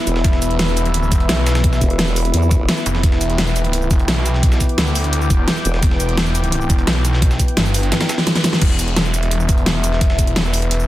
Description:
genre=dark technical drum and bass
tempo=172 BPM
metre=4/4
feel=straight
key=E minor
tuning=A4 = 439 Hz
part: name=sweeping resonant pad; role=sustained chords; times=0.0-10.9 s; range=E3 to G5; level=-24 LUFS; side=left 1 dB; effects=chorus, phaser, sidechain pumping
part: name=warbly tape-like pad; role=texture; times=0.0-8.6 s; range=B3 to D6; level=-29 LUFS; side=left 2 dB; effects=chorus, built-in reverb, sidechain pumping
part: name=formant-sweep wobble bass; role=bass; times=0.1-2.7, 5.7-5.8 s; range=E1 to E2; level=-17 LUFS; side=equal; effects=chorus
part: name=breakbeat sampler-style drum kit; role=drums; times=0.1-10.8 s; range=hi-hat, snare drum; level=-28 LUFS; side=equal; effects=high-pass filter on hats, high-pass filter on snare
part: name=dubstep drum kit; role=drums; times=0.1-10.9 s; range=cabasa, crash cymbal, hi-hat, snare drum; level=-20 LUFS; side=equal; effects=overdrive
part: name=snarling distorted saw bass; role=bass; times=0.2-10.9 s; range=E1 to D2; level=-18 LUFS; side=equal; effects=distortion, tube saturation, sidechain pumping
part: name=electronic kick drum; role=drums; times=0.2-10.3 s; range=none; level=-15 LUFS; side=equal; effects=overdrive
room=little or no reverb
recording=dense, heavily limited modern master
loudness=-14 LUFS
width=side -15 dB against mid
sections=0.0-8.6 A section; 8.6-10.9 A section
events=drop 0.0-8.6, 8.6-10.9; drum fill 7.9-8.6; band accent 8.5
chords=0.0 E5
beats=| 0.24 0.59 0.94 1.29 | 1.64 1.99 2.34 2.69 | 3.04 3.38 3.73 4.08 | 4.43 4.78 5.13 5.48 | 5.83 6.17 6.52 6.87 | 7.22 7.57 7.92 8.27 | 8.62 8.97 9.31 9.66 | 10.01 10.36 10.71

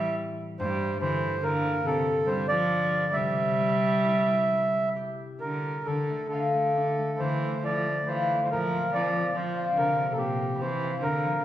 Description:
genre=celtic folk, Celtic slow air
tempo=63-73 BPM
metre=3/4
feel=rubato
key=D minor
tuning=A4 = 440 Hz
part: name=mellow accordion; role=melody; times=0.0-11.4 s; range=G4 to E5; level=-27 LUFS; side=right 1 dB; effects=none
part: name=rich cello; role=second line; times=0.0-11.4 s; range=Bb2 to G3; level=-31 LUFS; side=right 1 dB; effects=none
part: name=concert harp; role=accompaniment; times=0.0-11.4 s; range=G2 to F5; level=-30 LUFS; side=left 3 dB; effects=none
room=wet recital hall reverb, RT60 1.7 s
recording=recorded in a church or concert hall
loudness=-24 LUFS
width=side -12 dB against mid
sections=0.0-5.9 A section; 5.9-11.4 B section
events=none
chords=0.0 Am; 0.6 Gm; 3.1 C; 5.9 Dm; 8.5 Bbsus2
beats=| 0.58 1.42 2.27 | 3.14 4.03 4.94 | 5.86 6.74 7.62 | 8.49 9.34 10.18 | 11.02

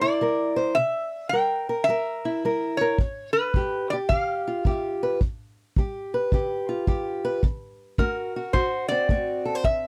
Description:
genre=acoustic country blues, solo or duo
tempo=108 BPM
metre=4/4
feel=swing 65% on 8ths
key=unclear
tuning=A4 = 440 Hz
part: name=lap resonator guitar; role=melody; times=0.0-9.9 s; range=Bb4 to G5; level=-27 LUFS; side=equal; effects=none
part: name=fingerpicked old ladder-braced acoustic guitar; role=accompaniment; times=0.0-9.9 s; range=G2 to C5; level=-29 LUFS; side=equal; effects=none
part: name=kick drum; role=drums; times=3.0-9.8 s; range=none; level=-26 LUFS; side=equal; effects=none
room=little or no reverb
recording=dry, close 1970s-style studio recording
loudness=-25 LUFS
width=mono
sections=0.0-9.9 A section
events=none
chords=0.0 C7; 3.0 G7; 7.4 D7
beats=0.20 | 0.76 1.31 1.87 2.43 | 2.98 3.54 4.09 4.65 | 5.20 5.76 6.32 6.87 | 7.43 7.98 8.54 9.09 | 9.65

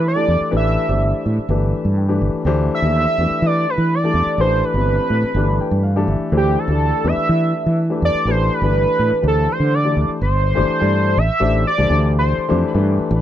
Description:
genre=electric jazz fusion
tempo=124 BPM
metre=4/4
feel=straight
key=unclear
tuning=A4 = 440 Hz
part: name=octave-doubled lead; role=melody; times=0.0-12.6 s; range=G4 to E5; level=-20 LUFS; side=right 1 dB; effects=chorus
part: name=dark concert grand piano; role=accompaniment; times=0.0-13.2 s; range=E3 to G5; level=-21 LUFS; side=left 4 dB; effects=none
part: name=fretless electric bass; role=bass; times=0.0-13.2 s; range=G1 to E3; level=-18 LUFS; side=right 1 dB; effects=none
room=little or no reverb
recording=dry, close 1970s-style studio recording, faint mains hum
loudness=-15 LUFS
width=side -11 dB against mid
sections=0.0-10.2 A section; 10.2-13.2 B section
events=grand piano fill 1.7-2.5, 5.4-6.3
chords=0.0 Em7; 0.5 Am11; 1.5 G69; 2.5 Dsus2; 3.2 Em7; 4.4 Am11; 5.4 G69; 6.3 Dsus2; 7.1 Em7; 8.3 A9sus4; 9.2 Dsus2; 10.2 Gsus24; 11.2 Am7; 11.9 D7(no3)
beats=0.05 | 0.54 1.02 1.50 1.98 | 2.47 2.95 3.43 3.92 | 4.40 4.88 5.37 5.85 | 6.33 6.82 7.30 7.79 | 8.27 8.75 9.24 9.72 | 10.21 10.69 11.17 11.66 | 12.14 12.62 13.11

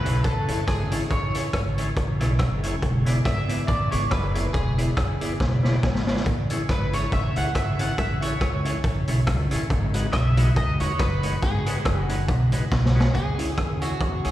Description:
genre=ska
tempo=140 BPM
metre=4/4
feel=swing 56% on 8ths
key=unclear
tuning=A4 = 440 Hz
part: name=electric guitar at the edge of break-up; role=melody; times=0.0-14.3 s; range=F#4 to F#5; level=-30 LUFS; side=equal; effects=lush chorus, tape echo, slapback echo
part: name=semi-hollow electric guitar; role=accompaniment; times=0.0-14.3 s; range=G#3 to D5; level=-34 LUFS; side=right 2 dB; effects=tape echo, slapback echo
part: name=percussive tonewheel organ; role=stabs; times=0.0-14.3 s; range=C#4 to D5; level=-36 LUFS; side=left 3 dB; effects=overdrive, chorus vibrato, slow rotary speaker, tape echo, slapback echo
part: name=upright bass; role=bass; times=0.1-14.3 s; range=E1 to E2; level=-24 LUFS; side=equal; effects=none
part: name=raw garage drum kit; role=drums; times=0.1-14.3 s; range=hi-hat, kick drum, rim click, snare drum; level=-25 LUFS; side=equal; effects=none
room=light reverb, studio reverb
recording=live gig heard through the venue's PA, recital hall reverb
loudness=-21 LUFS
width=side -14 dB against mid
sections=0.0-13.1 A section; 13.1-14.3 B section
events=drum fill 5.4-6.3, 12.7-13.1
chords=0.0 Amaj7; 2.8 E7; 6.3 Amaj7; 9.7 G#m7; 13.1 C#m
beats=0.24 0.67 | 1.10 1.53 1.96 2.39 | 2.82 3.25 3.68 4.11 | 4.54 4.97 5.40 5.83 | 6.26 6.69 7.12 7.55 | 7.98 8.41 8.84 9.27 | 9.70 10.13 10.56 10.99 | 11.42 11.85 12.28 12.71 | 13.14 13.58 14.01

